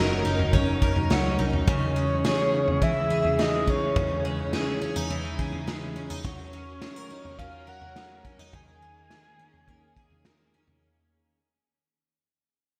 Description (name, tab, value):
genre	dream pop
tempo	105 BPM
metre	4/4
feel	straight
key	unclear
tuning	A4 = 441 Hz
part	phased string machine	sustained chords	0.0-10.8 s	Db3 to Bb4	-35 LUFS	equal	ensemble chorus, phaser
part	picked twelve-string acoustic guitar	arpeggios	0.0-11.4 s	Db3 to Bb4	-32 LUFS	equal	lush chorus, delay
part	vintage muted picked electric bass	bass	0.0-1.6 s	Gb1 to Gb2	-30 LUFS	equal	none
part	raw garage drum kit	drums	0.4-10.8 s	kick drum, snare drum, toms	-30 LUFS	equal	gated reverb
part	small celesta	texture	1.1-1.9 s	Gb5	-40 LUFS	equal	delay
part	soft octave-layered synth lead	melody	1.7-10.5 s	Db5 to Ab5	-32 LUFS	equal	chorus, delay
room	wet lush hall reverb, RT60 2.1 s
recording	bright 1980s-style digital production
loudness	-25 LUFS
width	mono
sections	0.0-10.8 A section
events	fade-out 0.0-10.8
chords	0.0 Gb6; 1.7 Dbmadd9; 6.2 Gb6; 8.5 Eb7sus4